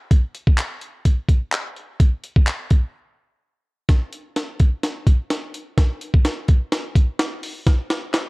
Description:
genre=pop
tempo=127 BPM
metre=4/4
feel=straight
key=none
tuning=none
part: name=breakbeat sampler-style drum kit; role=drums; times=0.1-8.3 s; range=handclaps, hi-hat, kick drum, snare drum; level=-17 LUFS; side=equal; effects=none
part: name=group handclap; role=percussion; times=0.6-2.6, 8.1-8.3 s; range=none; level=-32 LUFS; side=left 3 dB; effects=none
room=digital ambience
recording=worn, warbling old tape, cassette tape, warbly pitch drift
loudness=-18 LUFS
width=side -27 dB against mid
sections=0.0-3.9 A section; 3.9-8.3 B section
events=break 2.9-3.9; build-up 3.9-8.3; drum fill 3.9-8.3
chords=none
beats=| 0.11 0.58 1.05 1.53 | 2.00 2.47 2.94 3.42 | 3.89 4.36 4.83 5.30 | 5.78 6.25 6.72 7.20 | 7.67 8.14

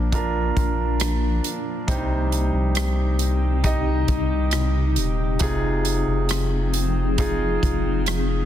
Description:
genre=pop ballad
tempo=68 BPM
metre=4/4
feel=straight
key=C minor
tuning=A4 = 440 Hz
part: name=clear concert grand piano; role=accompaniment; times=0.0-8.5 s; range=Bb2 to Eb5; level=-26 LUFS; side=right 2 dB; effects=none
part: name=granular cloud pad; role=sustained chords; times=0.0-8.5 s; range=C3 to Ab4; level=-28 LUFS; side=left 2 dB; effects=built-in reverb
part: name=saturated sub bass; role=bass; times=0.0-8.5 s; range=Eb1 to C2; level=-23 LUFS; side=equal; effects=none
part: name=natural country drum kit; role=drums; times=0.1-8.3 s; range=hi-hat, kick drum, rim click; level=-26 LUFS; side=equal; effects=soft clipping on snare
room=small room ambience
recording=dense, heavily limited modern master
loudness=-20 LUFS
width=side -11 dB against mid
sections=0.0-8.5 A section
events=none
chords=0.0 Bb; 1.9 Cm; 5.4 Fm7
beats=0.12 1.01 | 1.89 2.77 3.65 4.54 | 5.42 6.30 7.18 8.07

